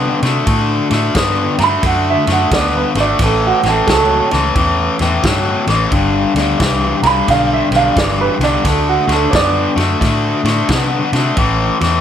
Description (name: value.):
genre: electric blues shuffle.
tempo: 88 BPM.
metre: 4/4.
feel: swing 64% on 8ths.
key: D mixolydian.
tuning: A4 = 440 Hz.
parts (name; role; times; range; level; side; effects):
warm upright piano; accompaniment; 0.0-11.3 s; F#4 to B5; -16 LUFS; right 6 dB; none.
overdriven electric guitar; riff; 0.0-12.0 s; G2 to B3; -15 LUFS; left 3 dB; none.
vintage muted fingered electric bass; bass; 0.0-12.0 s; G1 to C3; -19 LUFS; equal; none.
vintage drum kit; drums; 0.2-11.9 s; kick drum, ride cymbal, snare drum; -20 LUFS; equal; none.
room: moderate club reverb, RT60 0.5 s.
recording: none.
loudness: -12 LUFS.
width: side -9 dB against mid.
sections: 0.0-12.0 A section.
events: none.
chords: 0.0 D; 3.2 A; 5.9 G; 8.6 D7; 11.4 A5.